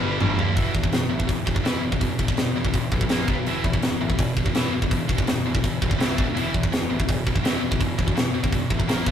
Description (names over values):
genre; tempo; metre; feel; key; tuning
heavy metal; 166 BPM; 4/4; straight; E minor; A4 = 440 Hz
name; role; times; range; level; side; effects
heavy high-gain guitar; riff; 0.0-9.1 s; E2 to D4; -27 LUFS; right 1 dB; distortion
growling picked electric bass; bass; 0.0-9.1 s; E1 to E2; -29 LUFS; equal; overdrive
tight metal drum kit; drums; 0.2-9.1 s; hi-hat, kick drum, snare drum, toms; -22 LUFS; left 1 dB; none
room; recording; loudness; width
light reverb; rough rehearsal-room recording, tube saturation; -20 LUFS; side -9 dB against mid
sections
0.6-9.1 A section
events
drum fill 0.0-0.6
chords
0.0 G; 0.6 E5; 3.1 A#5; 3.3 B5; 3.5 E5; 6.2 D5; 6.4 E5; 8.9 A#5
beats
0.21 | 0.57 0.93 1.29 1.65 | 2.01 2.38 2.74 3.10 | 3.46 3.82 4.18 4.55 | 4.91 5.27 5.63 6.00 | 6.36 6.72 7.08 7.44 | 7.80 8.16 8.53 8.89